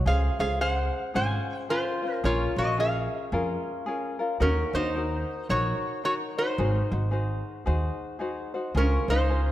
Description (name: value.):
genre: Hawaiian.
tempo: 110 BPM.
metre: 4/4.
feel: swing 61% on 8ths.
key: Db major.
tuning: A4 = 439 Hz.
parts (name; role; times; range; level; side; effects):
tenor ukulele; accompaniment; 0.0-9.5 s; Db4 to Db5; -32 LUFS; left 3 dB; none.
upright bass; bass; 0.0-9.5 s; Ab1 to F2; -27 LUFS; right 1 dB; none.
metal-body resonator slide guitar; melody; 0.1-9.5 s; Db4 to Ab5; -28 LUFS; equal; none.
room: moderate concert hall reverb, RT60 1.8 s.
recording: none.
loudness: -25 LUFS.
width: side -14 dB against mid.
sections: 0.0-9.5 A section.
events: none.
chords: 0.1 Dbmaj7; 2.2 Bbm7; 4.4 Ebm7; 6.6 Ab7; 8.8 Dbmaj7.